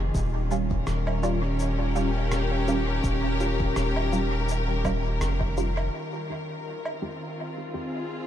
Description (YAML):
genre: ambient dub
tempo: 83 BPM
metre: 4/4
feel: swing 56% on 16ths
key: unclear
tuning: A4 = 439 Hz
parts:
  - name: warm symphonic string section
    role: sustained chords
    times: 0.0-8.3 s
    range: Eb3 to Bb4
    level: -30 LUFS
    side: left 2 dB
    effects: none
  - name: soft dub sub bass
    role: bass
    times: 0.0-5.9 s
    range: Eb1 to F1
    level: -27 LUFS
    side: equal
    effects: none
  - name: electronic kick drum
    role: drums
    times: 0.1-5.5 s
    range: none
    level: -31 LUFS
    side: equal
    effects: overdrive
  - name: electronic shaker, rim click and woodblock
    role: drums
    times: 0.1-7.0 s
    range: none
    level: -37 LUFS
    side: right 1 dB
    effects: overdrive, dub echo
  - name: filtered dub chord stab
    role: stabs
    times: 0.5-7.9 s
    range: F2 to G4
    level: -32 LUFS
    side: right 2 dB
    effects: analog chorus, dub echo
room: light reverb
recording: none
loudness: -24 LUFS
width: side -10 dB against mid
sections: 0.0-5.9 A section; 5.9-8.3 B section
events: filter sweep on synth stab 5.9-8.3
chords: 0.1 Eb7; 5.9 Fm7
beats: | 0.15 0.87 1.59 2.32 | 3.04 3.76 4.49 5.21 | 5.93 6.65 7.38 8.10